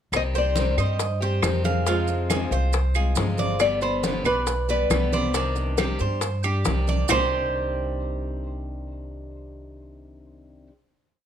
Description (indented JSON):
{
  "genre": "latin, Cuban son and guajira",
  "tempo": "137 BPM",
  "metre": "4/4",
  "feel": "straight",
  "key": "C harmonic minor",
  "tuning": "A4 = 440 Hz",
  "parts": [
    { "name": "picked steel-string acoustic guitar", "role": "accompaniment", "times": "0.1-10.7 s", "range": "B2 to G4", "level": "-31 LUFS", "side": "left 4 dB", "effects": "none" },
    { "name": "upright bass", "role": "bass", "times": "0.1-10.7 s", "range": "G1 to G2", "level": "-26 LUFS", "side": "equal", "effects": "none" },
    { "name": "bongos", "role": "percussion", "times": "0.1-7.2 s", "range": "none", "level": "-30 LUFS", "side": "left 7 dB", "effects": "none" },
    { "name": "claves", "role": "percussion", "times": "0.1-7.2 s", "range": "none", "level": "-30 LUFS", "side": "right 10 dB", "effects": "none" },
    { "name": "congas", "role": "percussion", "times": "0.1-7.2 s", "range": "none", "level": "-31 LUFS", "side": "left 1 dB", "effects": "none" },
    { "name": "maracas", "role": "percussion", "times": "0.1-7.2 s", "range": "none", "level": "-35 LUFS", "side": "right 13 dB", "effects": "none" },
    { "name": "nylon-string guitar", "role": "melody", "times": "0.2-10.7 s", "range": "G4 to Eb5", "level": "-26 LUFS", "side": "left 2 dB", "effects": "tape echo" },
    { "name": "Cuban tres", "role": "arpeggios", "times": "0.3-10.7 s", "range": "C4 to B5", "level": "-29 LUFS", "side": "right 6 dB", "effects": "none" }
  ],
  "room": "little or no reverb",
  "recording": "close, detailed microphones",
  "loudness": "-21 LUFS",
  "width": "side -9 dB against mid",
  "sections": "0.1-7.1 A section; 7.1-10.6 final chord",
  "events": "none",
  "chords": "0.1 Cm; 1.9 Fm; 3.6 G; 5.3 Cmadd9"
}